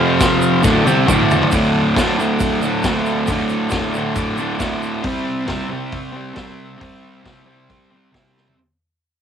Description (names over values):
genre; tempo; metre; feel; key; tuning
garage rock duo or trio; 136 BPM; 4/4; straight; D mixolydian; A4 = 440 Hz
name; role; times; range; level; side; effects
combo organ; sustained chords; 0.0-8.6 s; F4 to F#5; -29 LUFS; equal; none
fuzz guitar; riff; 0.0-8.6 s; D2 to C4; -17 LUFS; equal; distortion
vintage drum kit; drums; 0.2-8.6 s; crash cymbal, hi-hat, kick drum, snare drum, toms; -22 LUFS; left 1 dB; cassette tape
tube shaker; percussion; 0.2-4.9 s; none; -35 LUFS; right 9 dB; none
room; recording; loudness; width
wet booth ambience, RT60 0.2 s; home recording on cassette; -15 LUFS; side -8 dB against mid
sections
0.0-1.5 A section; 1.5-8.6 B section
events
drum fill 0.6-1.5, 8.4; fade-out 1.5-8.6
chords
0.0 F5; 0.6 D; 5.0 C